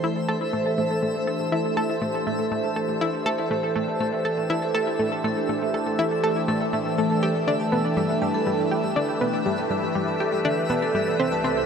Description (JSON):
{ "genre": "ambient, sequencer-driven space music", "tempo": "121 BPM", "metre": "4/4", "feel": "straight", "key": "A minor", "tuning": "A4 = 440 Hz", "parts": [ { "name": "phased analog pad", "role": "sustained chords", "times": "0.0-11.7 s", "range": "C2 to C5", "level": "-26 LUFS", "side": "left 1 dB", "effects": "phaser, chorus" }, { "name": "vibraphone with medium mallets", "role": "arpeggios", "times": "0.0-11.6 s", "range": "A4 to A5", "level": "-28 LUFS", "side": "right 4 dB", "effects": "auto-pan, low-pass filter, analog delay" }, { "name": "analog pluck", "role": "riff", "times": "0.0-11.6 s", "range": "G3 to A4", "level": "-27 LUFS", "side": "left 1 dB", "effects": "chorus, analog delay" }, { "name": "twinkling granular texture", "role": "texture", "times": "0.0-11.7 s", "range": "E5", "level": "-34 LUFS", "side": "left 2 dB", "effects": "built-in reverb" } ], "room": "wet huge ambient reverb, RT60 8.6 s", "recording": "none", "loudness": "-22 LUFS", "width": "side -6 dB against mid", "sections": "0.0-11.7 A section", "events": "filter sweep on vibraphone 0.0-11.7", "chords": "0.0 Am; 7.2 Gadd9" }